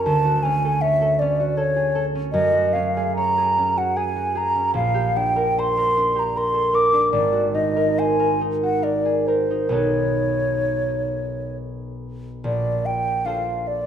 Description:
classical, impressionist duo for flute and harp; 64-80 BPM; 3/4; rubato; A4 = 439 Hz
mellow hollow silver concert flute; melody; 0.0-13.9 s; C5 to D6; -21 LUFS; equal
concert harp; accompaniment; 0.0-13.9 s; Ab1 to C#5; -22 LUFS; right 2 dB
wet recital hall reverb, RT60 1.4 s; minimal, uncompressed stereo recording; -18 LUFS; side -9 dB against mid
0.0-12.4 A section; 12.4-13.9 B section
0.0 Dmaj7; 2.3 Gbsus2; 4.7 Bb69; 7.1 Ab9; 9.7 B9; 12.4 Bbmaj9

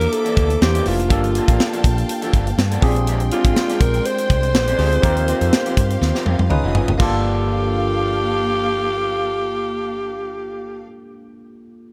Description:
polished 1980s jazz-funk pop; 122 BPM; 4/4; swing 54% on 16ths; G minor; A4 = 441 Hz
breathy alto saxophone; melody; 0.0-10.8 s; F4 to C5; -24 LUFS; equal
bell-like tine electric piano; accompaniment; 0.0-11.9 s; Bb3 to C5; -28 LUFS; equal; subtle chorus
warm studio string section; sustained chords; 0.0-10.8 s; Ab3 to D#6; -32 LUFS; equal
electric guitar through a small old amp; riff; 0.0-10.9 s; E3 to Bb4; -31 LUFS; equal; subtle chorus
woody fretless electric bass; bass; 0.0-10.8 s; F1 to G2; -23 LUFS; equal
tight funk drum kit; drums; 0.0-7.1 s; crash cymbal, hi-hat, kick drum, snare drum, toms; -22 LUFS; equal
small room ambience; -18 LUFS; mono
0.0-7.0 A section; 7.0-10.9 B section
drum fill 6.0-7.0
0.0 C9; 1.1 Gm9; 2.8 Bb13; 5.0 Eb69; 6.5 C#9; 7.0 Gm9

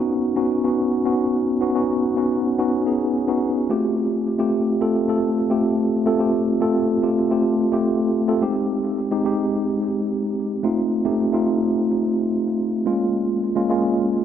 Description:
pop; 108 BPM; 4/4; straight; A4 = 440 Hz
mellow tine electric piano; solo; 0.0-14.2 s; Ab3 to A4; -18 LUFS; equal; medium stereo tremolo, tape echo
moderate lush hall reverb, RT60 2.8 s; -18 LUFS; side -9 dB against mid
0.0-8.4 A section; 8.4-14.2 B section
0.0 Badd9; 3.7 Fadd9; 8.4 Abmaj7; 10.6 F7; 12.9 Bbm7

